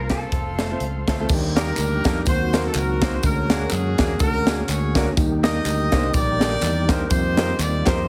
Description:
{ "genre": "uptempo gospel", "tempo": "124 BPM", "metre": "4/4", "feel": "swing 55% on 8ths", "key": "unclear", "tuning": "A4 = 438 Hz", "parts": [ { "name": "clear horn section", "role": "melody", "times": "0.0-8.1 s", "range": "C4 to Eb5", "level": "-28 LUFS", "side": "equal", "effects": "none" }, { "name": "semi-hollow electric guitar", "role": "melody", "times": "0.0-1.0 s", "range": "A4", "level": "-36 LUFS", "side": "equal", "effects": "subtle chorus" }, { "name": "clear studio string section", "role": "sustained chords", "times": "0.0-1.3 s", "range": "F3 to F4", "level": "-45 LUFS", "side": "equal", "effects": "none" }, { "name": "tonewheel organ", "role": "sustained chords", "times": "0.0-8.1 s", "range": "D3 to C6", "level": "-31 LUFS", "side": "equal", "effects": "fast rotary speaker" }, { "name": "fingered electric bass", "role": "bass", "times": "0.0-8.1 s", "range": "F1 to F#2", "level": "-27 LUFS", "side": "equal", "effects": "none" }, { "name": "bright upright piano", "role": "accompaniment", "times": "0.1-8.0 s", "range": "D3 to C5", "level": "-29 LUFS", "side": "equal", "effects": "none" }, { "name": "crisp fusion drum kit", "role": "drums", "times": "0.1-8.0 s", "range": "crash cymbal, hi-hat, kick drum, snare drum", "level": "-25 LUFS", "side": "equal", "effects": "none" }, { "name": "tambourine and handclaps", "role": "percussion", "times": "1.3-8.0 s", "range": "none", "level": "-36 LUFS", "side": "equal", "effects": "none" } ], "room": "light reverb, small room ambience", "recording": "heavily compressed radio sound, multiband compression", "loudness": "-21 LUFS", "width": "mono", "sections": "0.0-1.3 A section; 1.3-8.1 B section", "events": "none", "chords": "0.3 F; 1.3 Ebmaj7; 2.3 Ebm6; 3.2 Bb7alt/D; 5.2 Ebmaj7; 7.1 F9sus4" }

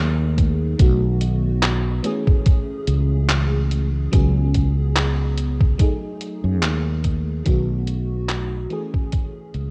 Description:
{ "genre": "vaporwave", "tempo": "72 BPM", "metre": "4/4", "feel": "swing 54% on 16ths", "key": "F# dorian", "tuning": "A4 = 439 Hz", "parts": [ { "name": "FM electric piano with soft pad layer", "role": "accompaniment", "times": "0.0-9.7 s", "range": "D#3 to G#4", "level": "-29 LUFS", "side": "equal", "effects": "phaser, lush chorus, vintage 12-bit sampler grit, analog delay" }, { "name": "mellow fretless electric bass", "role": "bass", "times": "0.0-9.7 s", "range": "B1 to F#2", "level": "-22 LUFS", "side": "equal", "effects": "none" }, { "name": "detuned 8-bit digital drum machine", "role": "drums", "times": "0.4-9.7 s", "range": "handclaps, hi-hat", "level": "-28 LUFS", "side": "equal", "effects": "vintage 12-bit sampler grit" }, { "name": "electronic kick drum", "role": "drums", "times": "0.4-9.3 s", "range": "none", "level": "-20 LUFS", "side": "equal", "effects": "vintage 12-bit sampler grit" } ], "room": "digital ambience", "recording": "rough home demo mix, cassette tape", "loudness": "-20 LUFS", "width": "mono", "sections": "0.0-9.7 A section", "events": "fade-out 5.2-9.7", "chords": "0.0 F#m69; 0.8 B7; 2.0 Amaj7; 4.1 C#7sus4; 5.8 F#m69; 7.5 B7; 8.7 Amaj7" }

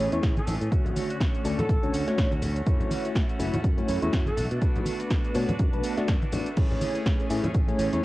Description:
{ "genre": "filtered disco house", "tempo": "123 BPM", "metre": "4/4", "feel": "swing 57% on 16ths", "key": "A major", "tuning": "A4 = 437 Hz", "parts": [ { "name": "tine electric piano", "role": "accompaniment", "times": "0.0-8.0 s", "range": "D3 to E5", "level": "-29 LUFS", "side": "equal", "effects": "medium stereo tremolo, phaser, sidechain pumping, low-pass filter, cassette tape" }, { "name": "phased string machine", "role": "sustained chords", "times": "0.0-8.0 s", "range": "D3 to A5", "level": "-38 LUFS", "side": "equal", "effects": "ensemble chorus, phaser, sidechain pumping, low-pass filter, cassette tape" }, { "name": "electric guitar at the edge of break-up", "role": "riff", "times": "0.0-8.0 s", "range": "E3 to G#4", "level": "-39 LUFS", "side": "equal", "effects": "sidechain pumping, low-pass filter, cassette tape" }, { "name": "modern bright fingered electric bass", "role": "bass", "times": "0.0-8.0 s", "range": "F#1 to B2", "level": "-30 LUFS", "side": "equal", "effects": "sidechain pumping, low-pass filter" }, { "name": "punchy analog drum machine", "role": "drums", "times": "0.1-8.0 s", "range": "crash cymbal, hi-hat, shaker, snare drum", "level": "-36 LUFS", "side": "equal", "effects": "sidechain pumping on hats, cassette tape, sidechain pumping on perc, sidechain pumping on cymbals" }, { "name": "egg shaker and congas", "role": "percussion", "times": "0.1-8.0 s", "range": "none", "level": "-31 LUFS", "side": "left 1 dB", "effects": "sidechain pumping on perc, low-pass filter on perc" }, { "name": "electronic kick drum", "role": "drums", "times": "0.2-7.7 s", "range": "none", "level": "-26 LUFS", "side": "equal", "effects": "cassette tape" }, { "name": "warm horn section", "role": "melody", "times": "0.4-4.4 s", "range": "A4", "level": "-35 LUFS", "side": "equal", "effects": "sidechain pumping, low-pass filter, tape echo" } ], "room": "light reverb", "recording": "home recording on cassette", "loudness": "-23 LUFS", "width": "side -18 dB against mid", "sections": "0.0-8.0 A section", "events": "none", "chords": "0.0 Amaj7; 0.7 Dmaj7; 2.7 F#m7; 4.4 Bm7; 6.6 Amaj7" }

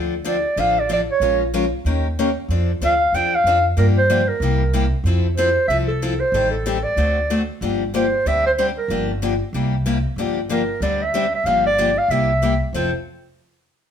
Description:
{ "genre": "acoustic string swing (jazz manouche)", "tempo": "187 BPM", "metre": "4/4", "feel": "swing 61% on 8ths", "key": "F major", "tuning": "A4 = 440 Hz", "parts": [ { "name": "picked steel-string acoustic guitar", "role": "accompaniment", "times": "0.0-12.9 s", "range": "C3 to Bb4", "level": "-23 LUFS", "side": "left 4 dB", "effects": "none" }, { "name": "upright bass", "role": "bass", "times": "0.0-12.9 s", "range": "F1 to G2", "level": "-22 LUFS", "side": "right 1 dB", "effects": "none" }, { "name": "mellow clarinet", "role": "melody", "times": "0.3-12.9 s", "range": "A4 to G5", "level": "-19 LUFS", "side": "right 1 dB", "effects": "none" } ], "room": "moderate studio reverb, RT60 0.8 s", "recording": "band playing live in one room", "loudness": "-17 LUFS", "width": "side -8 dB against mid", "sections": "0.0-7.6 A section; 7.6-12.7 B section; 12.7-13.9 C section", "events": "none", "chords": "0.0 Dm7; 1.2 Bbm7; 1.8 Eb7; 2.5 F6; 3.8 Gm7; 4.4 C7; 5.1 Fmaj7; 6.3 Am7b5; 7.0 D7; 7.6 Gm7; 8.3 D7sus4; 8.9 Gm7; 9.5 C7; 10.2 Gm7; 10.8 D9sus4; 11.5 Gm7; 12.1 C7; 12.7 Fmaj7" }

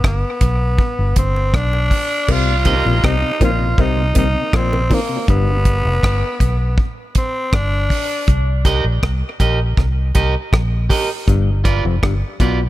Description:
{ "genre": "dub reggae", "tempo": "80 BPM", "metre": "4/4", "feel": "straight", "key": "C minor", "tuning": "A4 = 437 Hz", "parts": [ { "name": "growling tenor saxophone", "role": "melody", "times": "0.0-8.3 s", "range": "Bb3 to F4", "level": "-21 LUFS", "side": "equal", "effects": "dub echo" }, { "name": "vintage muted fingered electric bass", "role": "bass", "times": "0.0-12.7 s", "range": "F1 to C2", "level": "-17 LUFS", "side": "equal", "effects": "none" }, { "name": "deep reggae drum kit", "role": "drums", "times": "0.0-12.6 s", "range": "crash cymbal, hi-hat, kick drum, rim click", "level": "-18 LUFS", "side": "equal", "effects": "none" }, { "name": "bongos", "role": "percussion", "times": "0.4-5.1 s", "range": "none", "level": "-30 LUFS", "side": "right 4 dB", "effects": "none" }, { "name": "clav", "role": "riff", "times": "2.3-5.5, 11.3-12.6 s", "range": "F2 to C3", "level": "-24 LUFS", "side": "left 7 dB", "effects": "dub echo" }, { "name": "mellow tonewheel organ", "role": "accompaniment", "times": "2.5-5.6 s", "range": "G2 to C4", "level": "-25 LUFS", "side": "left 2 dB", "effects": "slow rotary speaker, high-pass filter, dub echo" }, { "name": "electric guitar at the edge of break-up", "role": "accompaniment", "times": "2.7-2.8, 8.6-12.6 s", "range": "F4 to Eb5", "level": "-22 LUFS", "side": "right 4 dB", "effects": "high-pass filter, dub echo" } ], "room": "small room reverb", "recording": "none", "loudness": "-14 LUFS", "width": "side -16 dB against mid", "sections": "0.0-2.3 A section; 2.3-12.7 B section", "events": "break 0.0-2.3; part muted 5.3-12.7", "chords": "0.0 G; 2.3 Cm7; 5.3 G; 8.3 Cm7; 11.3 G7" }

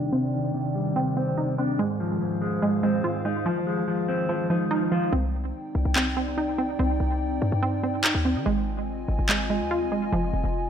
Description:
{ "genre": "hip hop, drill", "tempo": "144 BPM", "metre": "4/4", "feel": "half-time", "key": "C minor", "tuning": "A4 = 439 Hz", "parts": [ { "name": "mellow electric guitar", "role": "accompaniment", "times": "0.0-5.1 s", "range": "Ab2 to F4", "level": "-26 LUFS", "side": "left 1 dB", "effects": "low-pass filter" }, { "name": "dark analog pad", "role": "sustained chords", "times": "0.0-10.7 s", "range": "Eb3 to Ab5", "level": "-30 LUFS", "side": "left 1 dB", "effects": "chorus, low-pass filter" }, { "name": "hollow square pluck", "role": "arpeggios", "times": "0.0-10.7 s", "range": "F3 to F4", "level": "-28 LUFS", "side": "right 3 dB", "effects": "chorus, low-pass filter, digital delay" }, { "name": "short 808-style bass", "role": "bass", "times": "5.1-10.7 s", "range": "F1 to Eb3", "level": "-27 LUFS", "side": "left 1 dB", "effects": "none" }, { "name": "electronic handclaps", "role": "drums", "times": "6.0-9.4 s", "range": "none", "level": "-25 LUFS", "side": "equal", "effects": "none" } ], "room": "light reverb", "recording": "none", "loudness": "-23 LUFS", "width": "side -8 dB against mid", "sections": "0.0-5.1 A section; 5.1-10.7 B section", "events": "filter sweep 0.0-5.1; hi-hats muted 5.1-10.7", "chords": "0.0 Cmadd9; 1.8 Ab6; 5.1 Cmadd9; 8.5 Ab6; 10.1 Fm7" }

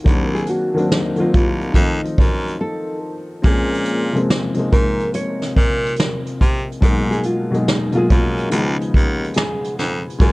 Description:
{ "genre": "lo-fi hip hop", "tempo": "71 BPM", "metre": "4/4", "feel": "swing 65% on 16ths", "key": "unclear", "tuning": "A4 = 441 Hz", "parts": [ { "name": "felt-muted upright piano", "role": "accompaniment", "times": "0.0-10.3 s", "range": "Cb3 to Ab4", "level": "-21 LUFS", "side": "left 1 dB", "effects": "cassette tape, low-pass filter" }, { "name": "edgy baritone saxophone", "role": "bass", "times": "0.1-10.3 s", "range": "C2 to C3", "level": "-23 LUFS", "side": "equal", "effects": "none" }, { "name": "vintage brush drum kit", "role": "drums", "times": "0.1-10.3 s", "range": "hi-hat, kick drum, snare drum", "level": "-17 LUFS", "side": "equal", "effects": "vintage 12-bit sampler grit" }, { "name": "nylon-string guitar", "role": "melody", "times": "0.3-10.3 s", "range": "Eb4 to Db5", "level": "-24 LUFS", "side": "equal", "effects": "low-pass filter" } ], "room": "light reverb, small room reverb", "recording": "none", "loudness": "-16 LUFS", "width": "side -22 dB against mid", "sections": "0.0-10.3 A section", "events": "break 2.6-3.4", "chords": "0.1 Cm7b5; 1.8 F7; 3.4 Bbm7; 6.8 Abm7; 8.5 Db7" }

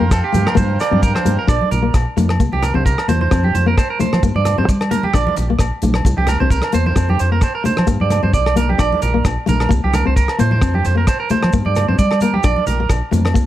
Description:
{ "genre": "highlife guitar band", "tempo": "131 BPM", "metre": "4/4", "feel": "swing 54% on 16ths", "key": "Bb major", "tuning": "A4 = 445 Hz", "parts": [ { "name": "nylon-string guitar", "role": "accompaniment", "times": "0.0-13.5 s", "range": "A3 to D4", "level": "-22 LUFS", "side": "left 7 dB", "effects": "plate reverb" }, { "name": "overdriven combo organ", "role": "sustained chords", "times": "0.0-1.5 s", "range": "F5 to C6", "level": "-28 LUFS", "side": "equal", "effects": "plate reverb" }, { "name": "electric guitar at the edge of break-up", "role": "arpeggios", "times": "0.0-13.2 s", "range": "G4 to D5", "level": "-20 LUFS", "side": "right 6 dB", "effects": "plate reverb, tape echo" }, { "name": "deep dub fingered electric bass", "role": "bass", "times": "0.0-13.5 s", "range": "Bb1 to G3", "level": "-18 LUFS", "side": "equal", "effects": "none" }, { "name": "damped 70s drum kit", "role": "drums", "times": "0.1-13.5 s", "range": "hi-hat, kick drum, rim click", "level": "-18 LUFS", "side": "equal", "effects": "none" }, { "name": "agogo bells", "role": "percussion", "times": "0.1-13.4 s", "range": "none", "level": "-28 LUFS", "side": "left 5 dB", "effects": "none" }, { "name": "maracas", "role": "percussion", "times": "0.1-13.5 s", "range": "none", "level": "-35 LUFS", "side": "left 4 dB", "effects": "none" }, { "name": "congas", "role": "percussion", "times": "0.3-13.2 s", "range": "none", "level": "-23 LUFS", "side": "right 1 dB", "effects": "none" } ], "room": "light reverb", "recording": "none", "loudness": "-14 LUFS", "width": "side -13 dB against mid", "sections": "0.0-1.5 A section; 1.5-13.5 B section", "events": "none", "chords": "0.0 Fsus2; 0.6 Gm7; 1.5 Bbmaj7; 2.4 C7; 3.3 F5; 4.2 Gm; 5.1 Bbmaj7; 6.1 C7; 7.0 F5; 7.9 Gm; 8.8 Bbmaj7; 9.7 C5; 10.6 F5; 11.5 Gm; 12.4 Bbmaj7" }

